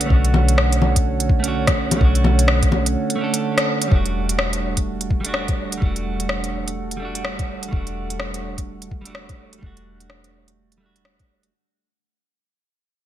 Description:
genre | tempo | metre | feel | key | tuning
future garage | 126 BPM | 4/4 | swing 61% on 16ths | E dorian | A4 = 440 Hz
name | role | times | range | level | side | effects
clean electric guitar | accompaniment | 0.0-11.5 s | G3 to A4 | -26 LUFS | right 5 dB | sidechain pumping, digital delay
dark analog pad | sustained chords | 0.0-11.5 s | D3 to F#5 | -28 LUFS | right 2 dB | chorus, sidechain pumping
soft 808-style bass | bass | 0.0-11.5 s | E1 to B1 | -22 LUFS | equal | sidechain pumping
organic electronic drum kit | drums | 0.0-11.5 s | bongos, hi-hat, rim click | -23 LUFS | left 2 dB | small room ambience, gated reverb
electronic kick drum | drums | 0.1-11.3 s | none | -19 LUFS | equal | small room ambience
room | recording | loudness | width
light reverb | bright 1980s-style digital production | -18 LUFS | side -12 dB against mid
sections
0.0-3.9 A section; 3.9-11.5 B section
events
break 3.0-3.9; band accent 3.6; fade-out 3.9-11.5; filter sweep on 808-style bass 3.9-11.5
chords
0.0 Bm7; 3.9 Em11

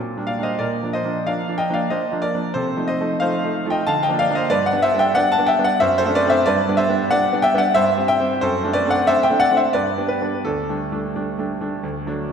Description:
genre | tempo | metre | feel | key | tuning
classical-period piano sonatina | 92 BPM | 3/4 | straight | G major from 4.5 s | A4 = 439 Hz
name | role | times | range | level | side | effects
clear concert grand piano | solo | 0.0-12.3 s | D2 to A5 | -17 LUFS | equal | none
room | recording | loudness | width
wet concert hall reverb, RT60 1.9 s | none | -17 LUFS | side -7 dB against mid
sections
0.0-12.3 A section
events
none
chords
0.0 Gm/Bb; 0.6 Bb; 2.6 F7/C; 3.9 Bb/D; 4.5 G; 5.8 D7/F#; 6.5 G; 7.8 C/G; 8.4 D7/F#; 9.8 G; 10.4 Dsus4

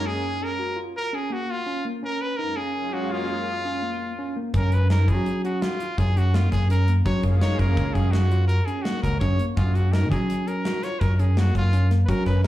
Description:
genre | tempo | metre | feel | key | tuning
progressive instrumental, band music in an uneven meter | 167 BPM | 7/4 | straight | F# major | A4 = 440 Hz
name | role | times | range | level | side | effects
brilliant trumpet | melody | 0.0-12.5 s | E#4 to C#5 | -29 LUFS | left 1 dB | slapback echo
lush unison pad | accompaniment | 0.0-12.2 s | F#2 to E#4 | -32 LUFS | left 1 dB | chorus, slapback echo
tine electric piano | arpeggios | 0.1-12.5 s | A#3 to F#4 | -31 LUFS | right 1 dB | fast stereo tremolo, slapback echo, ping-pong delay
picked electric bass | bass | 4.5-12.4 s | C#2 to F#3 | -20 LUFS | equal | none
gated 80s drum kit | drums | 4.5-12.5 s | hi-hat, kick drum, snare drum | -28 LUFS | equal | none
room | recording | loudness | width
light reverb | live gig heard through the venue's PA, club reverb | -21 LUFS | side -14 dB against mid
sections
0.0-12.5 A section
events
none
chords
0.0 F#maj7

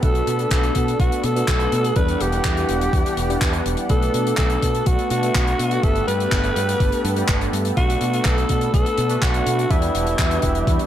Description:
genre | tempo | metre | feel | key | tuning
italo disco | 124 BPM | 4/4 | straight | B minor | A4 = 437 Hz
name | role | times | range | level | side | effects
breathy alto saxophone | melody | 0.0-10.9 s | E4 to B4 | -24 LUFS | equal | ping-pong delay, shimmer reverb
lush unison pad | sustained chords | 0.0-10.9 s | E3 to F#5 | -27 LUFS | equal | chorus, shimmer reverb
chorused polysynth | stabs | 0.0-10.9 s | G3 to B4 | -27 LUFS | right 1 dB | cassette tape, shimmer reverb
fingered electric bass with an envelope filter | bass | 0.0-10.8 s | E1 to B2 | -24 LUFS | equal | none
damped 70s drum kit | drums | 0.0-10.9 s | handclaps, hi-hat | -27 LUFS | left 1 dB | none
electronic kick drum | drums | 0.0-10.8 s | none | -21 LUFS | equal | overdrive
room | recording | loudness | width
light reverb, small room ambience | none | -17 LUFS | side -11 dB against mid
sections
0.0-10.9 A section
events
filter sweep on analog polysynth 0.0-10.9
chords
0.0 Bm7; 2.0 Em7; 3.9 Bm7; 5.8 Gadd9; 7.8 Bm7; 9.7 Em7

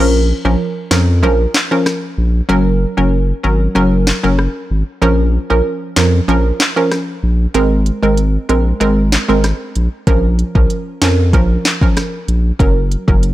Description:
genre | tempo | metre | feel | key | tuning
dancehall | 95 BPM | 4/4 | straight | Bb minor | A4 = 440 Hz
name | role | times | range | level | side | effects
analog pluck | accompaniment | 0.0-13.2 s | F3 to Bb4 | -16 LUFS | right 1 dB | chorus, sidechain pumping
saturated sub bass | bass | 0.0-13.3 s | Gb1 to F2 | -14 LUFS | equal | none
afro-pop drum kit | drums | 0.9-13.3 s | handclaps, hi-hat, kick drum, rim click, snare drum | -16 LUFS | equal | none
room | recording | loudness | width
digital ambience | none | -12 LUFS | side -15 dB against mid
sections
0.0-13.3 A section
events
break 0.0-10.1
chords
0.0 Bbm; 2.5 Gb; 5.0 Bbm; 7.5 Abadd9; 10.1 Bbm; 12.6 Gb

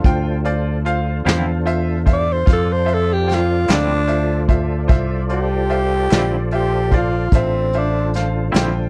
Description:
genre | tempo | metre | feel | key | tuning
slow blues | 50 BPM (dotted quarters) | 12/8 | straight | D minor | A4 = 440 Hz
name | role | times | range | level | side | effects
growling tenor saxophone | melody | 0.0-8.1 s | C4 to D5 | -22 LUFS | equal | none
bright concert grand piano | accompaniment | 0.0-8.9 s | F4 to G5 | -28 LUFS | equal | none
tonewheel organ | sustained chords | 0.0-8.9 s | D4 to D5 | -30 LUFS | equal | chorus vibrato, slow rotary speaker
fingered electric bass | bass | 0.0-8.9 s | A1 to F2 | -22 LUFS | equal | none
vintage brush drum kit | drums | 0.0-8.7 s | hi-hat, kick drum, snare drum | -19 LUFS | equal | none
twangy electric guitar | accompaniment | 1.3-8.8 s | D3 to E4 | -26 LUFS | equal | tremolo
room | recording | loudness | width
little or no reverb | none | -18 LUFS | mono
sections
0.0-8.9 A section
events
none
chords
0.0 Dm9

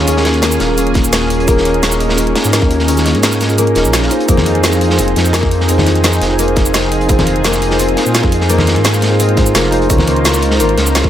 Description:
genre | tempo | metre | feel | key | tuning
liquid drum and bass | 171 BPM | 4/4 | straight | unclear | A4 = 440 Hz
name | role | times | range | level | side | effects
mellow tine electric piano | accompaniment | 0.0-11.1 s | Db4 to C5 | -18 LUFS | right 1 dB | tape echo
lush unison pad | sustained chords | 0.0-11.1 s | Bb3 to C5 | -19 LUFS | equal | chorus, sidechain pumping
concert harp | arpeggios | 0.0-11.1 s | Bb3 to F4 | -19 LUFS | left 5 dB | tape echo
dark detuned saw bass | bass | 0.0-11.1 s | Eb1 to Bb2 | -16 LUFS | equal | none
crunchy breakbeat drum kit | drums | 0.1-11.0 s | hi-hat, snare drum | -20 LUFS | equal | high-pass filter on hats, high-pass filter on snare, high-pass filter on room
drum and bass drum kit | drums | 0.1-11.0 s | hi-hat, shaker, snare drum | -18 LUFS | right 1 dB | none
electronic kick drum | drums | 1.0-11.1 s | none | -14 LUFS | equal | none
congas | percussion | 4.4-10.1 s | none | -20 LUFS | left 2 dB | none
room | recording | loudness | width
light reverb, small room ambience | none | -10 LUFS | side -11 dB against mid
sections
0.0-11.1 A section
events
kick drops out 2.9-4.3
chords
0.0 Eb7sus4; 4.1 Fm7; 9.9 Dbmaj13

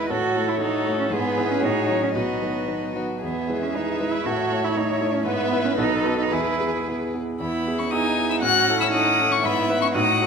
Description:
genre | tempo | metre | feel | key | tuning
quick classical-period movement for piano quintet | 109-121 BPM | 2/4 | rubato | E major | A4 = 440 Hz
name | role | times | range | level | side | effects
warm violin | melody | 0.0-10.3 s | D#4 to F#6 | -26 LUFS | left 6 dB | none
dark cello | second line | 0.0-10.3 s | B3 to F#4 | -25 LUFS | right 5 dB | none
warm violin | second line | 0.0-10.3 s | B4 to G#5 | -30 LUFS | left 5 dB | none
clear baby grand piano | accompaniment | 0.0-10.3 s | B1 to C#5 | -26 LUFS | right 1 dB | none
rich viola | accompaniment | 0.0-10.3 s | C#4 to C#5 | -30 LUFS | right 1 dB | none
room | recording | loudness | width
moderate concert hall reverb, RT60 2.4 s | minimal, uncompressed stereo recording | -20 LUFS | side -6 dB against mid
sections
0.0-7.4 A section; 7.4-10.3 A section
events
none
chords
0.1 A; 1.1 E/G#; 1.6 F#m/A; 2.1 B; 3.2 E; 4.3 A; 5.3 E/G#; 5.8 B7; 6.3 E; 8.4 A; 9.4 E/G#

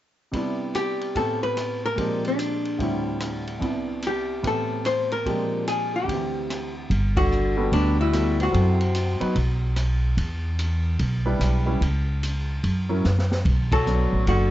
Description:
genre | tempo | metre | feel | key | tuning
jazz, small-group swing and bop | 146 BPM | 4/4 | swing 65% on 8ths | G major | A4 = 440 Hz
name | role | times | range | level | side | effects
clear grand piano | accompaniment | 0.3-14.5 s | C2 to B4 | -28 LUFS | equal | none
open jazz drum kit | drums | 0.3-14.4 s | hi-hat, kick drum, ride cymbal, rim click, snare drum | -31 LUFS | equal | none
archtop guitar, miked and amplified | melody | 0.8-10.0, 13.7-14.5 s | D4 to C5 | -26 LUFS | left 2 dB | none
upright bass | bass | 6.9-14.5 s | F#1 to F#2 | -22 LUFS | equal | none
clear tenor saxophone | second line | 7.2-9.3, 13.7-14.5 s | B2 to F#3 | -30 LUFS | right 3 dB | none
room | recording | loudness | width
light reverb | dark, warm production, nothing above 7.8 kHz | -21 LUFS | side -14 dB against mid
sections
0.3-6.9 A section; 6.9-14.5 B section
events
band accent 7.1, 13.7; drum fill 13.0-13.4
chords
0.3 Cmaj9; 1.1 Am9; 2.0 Bb13; 2.8 D9sus4; 3.6 Cmaj9; 4.4 Am9; 5.3 Bb13; 6.1 D9sus4; 6.9 Gmaj9; 8.5 F#m7b5; 9.4 B5; 10.2 Em7; 11.8 N.C.; 12.6 F#7; 13.4 Bm7

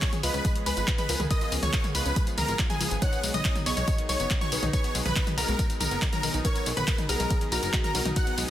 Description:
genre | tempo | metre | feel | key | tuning
uplifting trance | 140 BPM | 4/4 | straight | unclear | A4 = 440 Hz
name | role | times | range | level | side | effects
big supersaw lead | melody | 0.0-8.4 s | G#4 to F#5 | -32 LUFS | equal | sidechain pumping, tape echo
analog pluck | second line | 0.0-8.4 s | G#5 to F#6 | -38 LUFS | equal | chorus, sidechain pumping, tape echo
felt-muted upright piano | second line | 0.0-8.5 s | F#4 to D#5 | -37 LUFS | equal | tape echo
supersaw pad | sustained chords | 0.0-8.4 s | E#3 to G#4 | -36 LUFS | right 2 dB | sidechain pumping
analog pluck | arpeggios | 0.0-8.4 s | D#3 to G#4 | -37 LUFS | left 3 dB | chorus, phaser, sidechain pumping, tape echo
electronic kick drum | drums | 0.0-8.2 s | none | -27 LUFS | equal | none
punchy analog drum machine | drums | 0.0-8.5 s | handclaps, hi-hat, tambourine, toms | -30 LUFS | left 1 dB | none
plucky analog bass | bass | 0.2-8.4 s | F#1 to C#2 | -31 LUFS | equal | sidechain pumping
room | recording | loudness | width
light reverb | dense, heavily limited modern master | -24 LUFS | side -12 dB against mid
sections
0.0-8.5 A section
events
none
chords
0.0 C#; 3.0 B6

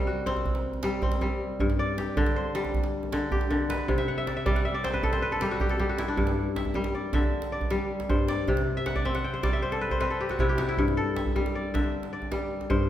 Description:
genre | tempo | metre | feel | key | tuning
west african traditional, West African string and xylophone music | 104 BPM (dotted quarters) | 12/8 | straight | G major | A4 = 440 Hz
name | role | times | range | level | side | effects
kora | arpeggios | 0.0-12.9 s | G2 to G5 | -27 LUFS | left 2 dB | none
djembe | percussion | 0.3-12.8 s | none | -30 LUFS | right 2 dB | none
room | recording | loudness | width
wet recital hall reverb, RT60 1.6 s | recorded in a church or concert hall | -25 LUFS | side -11 dB against mid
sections
0.0-6.2 A section; 6.2-12.9 B section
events
kora fill 4.0-6.2, 8.8-10.8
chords
0.0 C5; 1.6 G5; 3.9 C5; 6.2 G5; 8.5 C5; 10.8 G5

